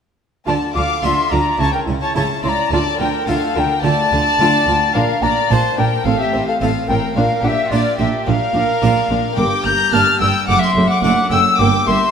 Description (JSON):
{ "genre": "classical, baroque-style concerto movement with solo episodes", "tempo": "108 BPM", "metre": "4/4", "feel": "straight", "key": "D minor", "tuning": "A4 = 439 Hz", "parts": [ { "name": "mellow wooden flute", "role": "melody", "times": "0.5-12.1 s", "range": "D5 to G6", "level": "-19 LUFS", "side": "left 1 dB", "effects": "none" }, { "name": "warm chamber violin section", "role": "melody", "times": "0.5-12.1 s", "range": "D5 to G6", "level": "-22 LUFS", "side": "left 6 dB", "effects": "none" }, { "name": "warm chamber violin section", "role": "second line", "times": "0.5-12.1 s", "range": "F4 to Bb5", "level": "-22 LUFS", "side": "left 2 dB", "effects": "none" }, { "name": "dark chamber viola section", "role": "accompaniment", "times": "0.5-12.0 s", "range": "A3 to F4", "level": "-24 LUFS", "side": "right 2 dB", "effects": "none" }, { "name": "harpsichord", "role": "accompaniment", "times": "0.5-12.1 s", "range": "F#2 to A4", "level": "-25 LUFS", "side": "left 1 dB", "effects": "none" }, { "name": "rich chamber double bass section", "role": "bass", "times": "0.5-12.0 s", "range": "F#1 to D2", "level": "-22 LUFS", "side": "right 3 dB", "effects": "none" }, { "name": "warm chamber cello section", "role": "bass", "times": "0.5-12.0 s", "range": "F#2 to D3", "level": "-22 LUFS", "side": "right 3 dB", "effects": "none" } ], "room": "wet concert hall reverb, RT60 1.9 s", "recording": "none", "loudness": "-14 LUFS", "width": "side -7 dB against mid", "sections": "0.5-12.1 A section", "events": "none", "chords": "0.5 Dm; 1.6 A/C#; 2.7 Dm; 5.0 Bb; 6.1 F/A; 7.2 Bb; 9.4 Gm; 10.5 D/F#; 11.6 Gm" }